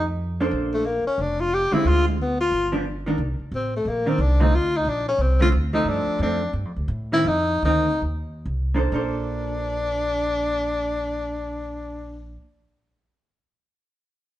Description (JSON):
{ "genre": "jazz, small-group swing and bop", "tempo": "126-180 BPM", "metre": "4/4", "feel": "swing 62% on 8ths", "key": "Bb major", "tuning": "A4 = 440 Hz", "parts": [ { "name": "warm tenor saxophone", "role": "melody", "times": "0.0-12.4 s", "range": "Ab3 to G4", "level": "-23 LUFS", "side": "left 2 dB", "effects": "none" }, { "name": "upright bass", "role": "bass", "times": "0.0-12.4 s", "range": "F1 to A2", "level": "-25 LUFS", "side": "equal", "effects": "none" }, { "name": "vintage hollow-body jazz guitar", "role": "accompaniment", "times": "0.4-12.4 s", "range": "D3 to C5", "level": "-26 LUFS", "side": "right 2 dB", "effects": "none" } ], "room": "moderate stone room reverb, RT60 1.2 s", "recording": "band playing live in one room, nothing above 10.5 kHz", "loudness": "-20 LUFS", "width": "side -14 dB against mid", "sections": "0.0-3.2 A section; 3.2-8.9 B section; 8.9-12.7 C section", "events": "slowing down 5.9-8.9", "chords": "0.0 F; 0.5 Bbmaj9; 1.8 Dm7b5; 2.5 G7; 3.2 C7sus2; 4.5 Dm7; 5.9 G9sus4; 7.3 F7sus4; 8.9 Bbmaj9" }